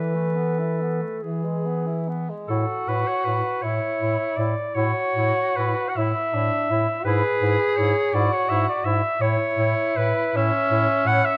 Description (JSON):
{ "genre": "classical, lyrical piece for single-reed quartet", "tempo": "45-60 BPM (dotted quarters)", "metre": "6/8", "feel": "rubato", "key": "A major", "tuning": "A4 = 440 Hz", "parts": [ { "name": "bright clarinet", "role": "melody", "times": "0.0-11.4 s", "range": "A4 to F#5", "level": "-27 LUFS", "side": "equal", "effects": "none" }, { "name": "clear clarinet", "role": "second line", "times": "0.0-11.2 s", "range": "E4 to A4", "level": "-34 LUFS", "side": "equal", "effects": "none" }, { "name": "warm tenor saxophone", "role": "accompaniment", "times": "0.0-11.4 s", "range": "E3 to G#4", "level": "-28 LUFS", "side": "equal", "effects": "none" }, { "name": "warm bass clarinet", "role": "bass", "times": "0.0-11.2 s", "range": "G#2 to E3", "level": "-28 LUFS", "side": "equal", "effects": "none" } ], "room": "light reverb", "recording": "close, detailed microphones, vinyl crackle", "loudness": "-23 LUFS", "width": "mono", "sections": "0.0-2.5 A section; 2.5-11.4 B section", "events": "none", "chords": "0.0 Esus4; 1.2 E; 2.5 A; 7.1 E/G#; 9.2 A", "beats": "1.22 | 2.50 3.63 | 4.76 5.97 | 7.07 8.14 | 9.21 10.36" }